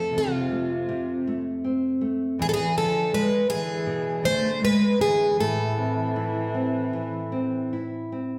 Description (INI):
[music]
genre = fado-style ballad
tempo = 79 BPM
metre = 4/4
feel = rubato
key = A harmonic minor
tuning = A4 = 438 Hz
[part]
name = picked plugged-in twelve-string acoustic guitar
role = melody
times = 0.0-7.7 s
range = F4 to C5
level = -27 LUFS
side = equal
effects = none
[part]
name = warm cello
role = second line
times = 0.0-7.7 s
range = C3 to A3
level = -31 LUFS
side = equal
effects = none
[part]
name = nylon-string guitar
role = accompaniment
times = 0.0-8.4 s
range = E2 to E4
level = -30 LUFS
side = equal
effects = none
[sound]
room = wet recital hall reverb, RT60 1.4 s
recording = recorded in a church or concert hall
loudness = -25 LUFS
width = mono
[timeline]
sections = 0.0-8.4 A section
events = none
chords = 0.0 F; 2.4 E7; 5.4 Am